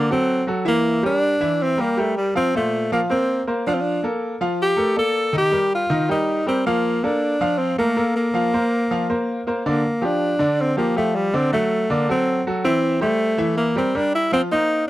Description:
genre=latin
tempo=160 BPM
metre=4/4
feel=straight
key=unclear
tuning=A4 = 442 Hz
part: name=bright tenor saxophone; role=melody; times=0.0-14.9 s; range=G3 to A4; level=-20 LUFS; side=equal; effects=none
part: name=bright grand piano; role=accompaniment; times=0.0-14.8 s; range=Bb2 to F5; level=-22 LUFS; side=equal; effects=none
room=moderate booth ambience, RT60 0.2 s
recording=dry, close 1970s-style studio recording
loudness=-18 LUFS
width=side -15 dB against mid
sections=0.0-9.8 A section; 9.8-14.9 A section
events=none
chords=0.0 D7 (rootless); 0.8 Em7b5; 2.3 Fsus4; 3.8 Bbmaj7; 5.3 Eb; 6.8 Bbmaj7; 8.3 Fsus4; 9.8 Dmadd11; 11.3 D7; 12.8 C7; 14.3 F7sus4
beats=0.09 0.47 | 0.84 1.22 1.59 1.97 | 2.34 2.72 3.09 3.47 | 3.84 4.22 4.59 4.96 | 5.34 5.71 6.09 6.46 | 6.84 7.21 7.59 7.96 | 8.34 8.71 9.08 9.46 | 9.83 10.21 10.58 10.96 | 11.33 11.71 12.08 12.45 | 12.83 13.20 13.58 13.95 | 14.32 14.70

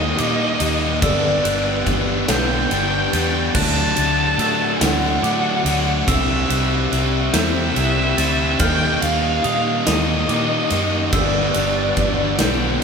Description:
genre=post-rock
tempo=48 BPM (dotted quarters)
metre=6/8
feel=straight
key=G major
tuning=A4 = 440 Hz
part: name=muted violin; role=melody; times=0.0-12.8 s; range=D5 to A5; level=-23 LUFS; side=equal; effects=none
part: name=glassy FM pad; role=sustained chords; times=0.0-12.8 s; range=D4 to G5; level=-34 LUFS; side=equal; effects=none
part: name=glockenspiel with soft plastic mallets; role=arpeggios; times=0.0-12.8 s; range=D6 to A6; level=-30 LUFS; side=right 3 dB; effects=none
part: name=overdriven electric guitar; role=riff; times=0.0-12.8 s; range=G2 to E4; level=-22 LUFS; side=left 8 dB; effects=none
part: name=thick fuzz guitar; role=riff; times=0.0-12.8 s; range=G2 to E4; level=-24 LUFS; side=right 9 dB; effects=distortion
part: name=vintage muted fingered electric bass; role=bass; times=0.0-12.8 s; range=G1 to Bb2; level=-24 LUFS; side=equal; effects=none
part: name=big rock drum kit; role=drums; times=0.2-12.6 s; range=crash cymbal, kick drum, ride cymbal, snare drum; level=-22 LUFS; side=right 1 dB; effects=none
room=moderate stone room reverb, RT60 1.3 s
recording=band playing live in one room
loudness=-16 LUFS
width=side -6 dB against mid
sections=0.0-12.8 A section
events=none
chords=0.0 Eb; 1.0 G; 3.5 D; 6.1 C; 8.6 Eb; 11.1 G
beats=| 1.02 2.28 | 3.55 4.81 | 6.07 7.34 | 8.60 9.87 | 11.13 12.40

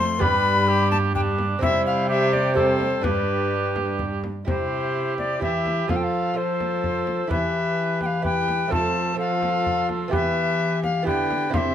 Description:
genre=classical, renaissance-style consort dance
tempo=127 BPM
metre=3/4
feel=straight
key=unclear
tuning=A4 = 442 Hz
part: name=bright alto recorder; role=melody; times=0.0-11.7 s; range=B4 to C6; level=-25 LUFS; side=left 5 dB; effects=none
part: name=warm cor anglais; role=second line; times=0.0-11.7 s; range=D4 to C5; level=-27 LUFS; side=right 5 dB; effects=none
part: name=lute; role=accompaniment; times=0.0-11.7 s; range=F2 to C5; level=-30 LUFS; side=right 5 dB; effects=none
part: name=warm viola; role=accompaniment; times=0.0-11.7 s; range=G3 to G4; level=-30 LUFS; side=left 3 dB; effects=none
part: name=warm cello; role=bass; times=0.0-11.7 s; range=F2 to F3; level=-27 LUFS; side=right 1 dB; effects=none
part: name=frame drum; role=percussion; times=0.2-11.7 s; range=none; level=-30 LUFS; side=left 1 dB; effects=none
room=light reverb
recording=none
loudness=-20 LUFS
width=side -9 dB against mid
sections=0.0-4.5 A section; 4.5-11.7 B section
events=none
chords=0.2 G; 1.6 C; 3.0 G; 4.5 C; 5.9 F; 7.3 Em; 8.7 F; 10.1 Em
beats=| 0.21 0.68 1.15 | 1.62 2.09 2.56 | 3.04 3.52 4.00 | 4.47 4.95 5.42 | 5.89 6.36 6.83 | 7.31 7.78 8.25 | 8.72 9.19 9.66 | 10.13 10.60 11.06 | 11.53

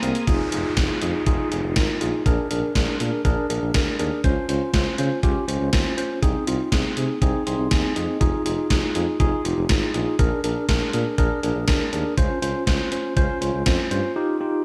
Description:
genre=synth-pop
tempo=121 BPM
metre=4/4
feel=straight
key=unclear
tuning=A4 = 440 Hz
part: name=tine electric piano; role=accompaniment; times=0.0-14.6 s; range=Bb3 to C6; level=-26 LUFS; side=equal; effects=medium tremolo, slapback echo
part: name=warm tuba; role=bass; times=0.0-14.0 s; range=F1 to Db3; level=-30 LUFS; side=equal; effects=none
part: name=gated 80s digital drum machine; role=drums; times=0.0-14.0 s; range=hi-hat, kick drum, snare drum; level=-25 LUFS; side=equal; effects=gated reverb, gated reverb snare
part: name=downlifter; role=sound effects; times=0.3-4.2 s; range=none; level=-38 LUFS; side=equal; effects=slapback echo
room=moderate concert hall reverb, RT60 1.7 s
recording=big arena sound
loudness=-22 LUFS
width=mono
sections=0.3-14.6 A section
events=tine electric piano fill 7.2-8.2; break 14.2-14.6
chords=0.3 Fm7; 2.3 Bb7; 4.2 Dbmaj7; 6.2 Ab/C; 8.2 Fm7; 10.2 Bb7; 12.2 Dbmaj7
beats=| 0.28 0.77 1.27 1.76 | 2.26 2.75 3.25 3.75 | 4.24 4.74 5.23 5.73 | 6.22 6.72 7.22 7.71 | 8.21 8.71 9.20 9.70 | 10.19 10.69 11.18 11.68 | 12.18 12.67 13.17 13.66 | 14.16

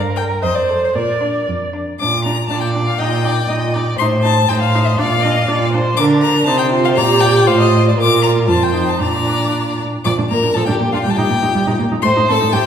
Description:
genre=quick classical-period movement for string quartet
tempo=120 BPM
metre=2/4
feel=rubato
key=Bb major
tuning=A4 = 440 Hz
part: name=rich viola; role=accompaniment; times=0.0-12.6 s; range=F3 to D5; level=-19 LUFS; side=right 2 dB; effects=none
part: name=warm cello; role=bass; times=0.0-12.6 s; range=F2 to D3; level=-18 LUFS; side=right 2 dB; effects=none
part: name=rich violin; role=melody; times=0.2-12.7 s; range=Bb4 to D6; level=-19 LUFS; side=left 6 dB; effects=none
part: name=rich violin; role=second line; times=0.2-12.6 s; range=D4 to Eb5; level=-20 LUFS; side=left 1 dB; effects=none
room=wet recital hall reverb, RT60 1.6 s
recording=heard from further back in the room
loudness=-13 LUFS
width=side -8 dB against mid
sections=0.0-2.0 A section; 2.0-10.1 B section; 10.1-12.7 B section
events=none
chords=0.4 F; 1.0 Bb; 3.0 Eb/Bb; 4.0 Adim; 5.0 Bb; 6.0 Bb/D; 6.5 Cmadd11; 7.0 Gm/Bb; 7.5 F/A; 8.0 Bb; 8.5 F5; 9.0 Bb; 11.1 Eb/Bb; 12.0 Am7b5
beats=0.44 | 0.96 1.49 | 2.01 2.51 | 3.01 3.50 | 4.00 4.50 | 4.98 5.48 | 5.97 6.47 | 6.96 7.47 | 7.98 8.49 | 9.01 9.53 | 10.05 10.56 | 11.05 11.55 | 12.05 12.54

